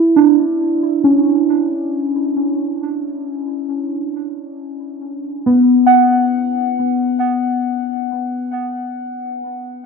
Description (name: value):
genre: ambient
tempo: free time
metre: none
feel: none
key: B minor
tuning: A4 = 441 Hz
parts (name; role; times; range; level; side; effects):
- muted felt-like synth keys; solo; 0.0-9.9 s; B3 to F#5; -14 LUFS; right 1 dB; chorus, phaser, tape echo
room: wet scoring stage reverb, RT60 1.8 s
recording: cassette tape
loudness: -14 LUFS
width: side -4 dB against mid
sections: 0.0-9.9 A section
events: none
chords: 0.1 Bm; 7.1 N.C.